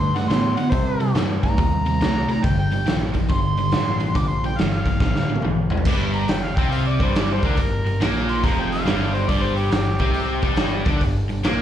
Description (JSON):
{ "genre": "blues rock power trio and southern rock", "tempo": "140 BPM", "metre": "4/4", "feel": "swing 65% on 8ths", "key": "G minor", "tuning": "A4 = 440 Hz", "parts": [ { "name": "overdriven harmonica", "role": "melody", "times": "0.0-10.4 s", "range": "G4 to D6", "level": "-27 LUFS", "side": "equal", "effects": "slapback echo, tape echo" }, { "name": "crunchy overdriven guitar", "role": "riff", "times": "0.0-11.6 s", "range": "F2 to D4", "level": "-23 LUFS", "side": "equal", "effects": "slapback echo" }, { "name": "growling picked electric bass", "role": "bass", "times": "0.0-11.6 s", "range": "F1 to C3", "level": "-24 LUFS", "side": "equal", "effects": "overdrive" }, { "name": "raw garage drum kit", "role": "drums", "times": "0.2-11.6 s", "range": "crash cymbal, hi-hat, kick drum, snare drum, toms", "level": "-23 LUFS", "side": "equal", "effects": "none" } ], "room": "studio reverb", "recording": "live gig heard through the venue's PA, club reverb", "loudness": "-18 LUFS", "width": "side -10 dB against mid", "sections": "0.0-5.9 A section; 5.9-11.6 B section", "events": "drum fill 5.0-5.9; harmonica solo 5.9-11.6", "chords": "0.0 D; 0.7 Cm7; 2.4 Gm9; 5.9 Gm" }